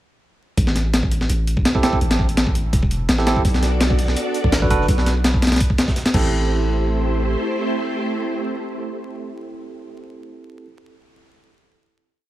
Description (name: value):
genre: drum and bass, jungle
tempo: 167 BPM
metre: 4/4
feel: swing 54% on 16ths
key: A dorian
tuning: A4 = 440 Hz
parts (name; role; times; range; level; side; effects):
- long sustained 808-style bass; bass; 0.6-7.4 s; E1 to B1; -20 LUFS; equal; none
- breakbeat sampler-style drum kit; drums; 0.6-6.2 s; crash cymbal, hi-hat, kick drum, snare drum; -19 LUFS; equal; studio reverb
- bright tine electric piano; stabs; 1.7-10.7 s; C4 to B4; -26 LUFS; right 4 dB; dub echo
- soft string machine; sustained chords; 3.4-10.0 s; A3 to D5; -25 LUFS; right 1 dB; ensemble chorus, vintage 12-bit sampler grit
- crunchy breakbeat drum kit; drums; 3.5-6.1 s; hi-hat, snare drum; -34 LUFS; right 2 dB; none
room: digital ambience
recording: vinyl crackle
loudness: -17 LUFS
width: side -14 dB against mid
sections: 0.6-6.3 drop; 6.3-9.2 final hit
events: drop 0.6-6.3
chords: 0.6 Am7; 3.4 Bm7; 6.1 Am7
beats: | 0.57 0.93 1.29 1.65 | 2.01 2.37 2.73 3.09 | 3.45 3.81 4.17 4.53 | 4.89 5.25 5.60 5.96 | 6.32 6.68 7.04 7.40 | 7.76 8.12 8.48 8.84